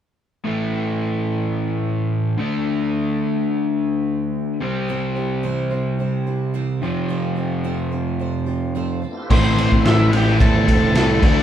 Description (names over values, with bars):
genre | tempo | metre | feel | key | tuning
classic rock | 108 BPM | 4/4 | straight | A minor | A4 = 440 Hz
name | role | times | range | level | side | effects
crunchy overdriven guitar | riff | 0.4-11.4 s | F2 to D4 | -20 LUFS | equal | none
picked steel-string acoustic guitar | accompaniment | 4.9-11.4 s | A2 to D5 | -30 LUFS | right 2 dB | none
tonewheel organ | sustained chords | 9.0-11.4 s | A3 to D5 | -32 LUFS | equal | none
octave-fuzz lead guitar | melody | 9.3-11.4 s | C5 to A5 | -24 LUFS | left 5 dB | distortion, slapback echo
smooth overdriven lead guitar | second line | 9.3-11.4 s | C4 to A4 | -26 LUFS | right 5 dB | none
crunchy overdriven guitar | riff | 9.3-11.4 s | A2 to D4 | -23 LUFS | equal | none
picked electric bass | bass | 9.3-11.4 s | E1 to E2 | -22 LUFS | equal | none
raw garage drum kit | drums | 9.3-11.4 s | crash cymbal, kick drum, ride cymbal, snare drum | -17 LUFS | equal | none
room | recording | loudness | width
moderate studio ambience, RT60 0.4 s | band playing live in one room | -18 LUFS | side -10 dB against mid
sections
0.5-9.3 A section; 9.3-11.4 B section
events
none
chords
0.5 A5; 2.4 D5; 4.6 C; 6.8 F; 9.3 Am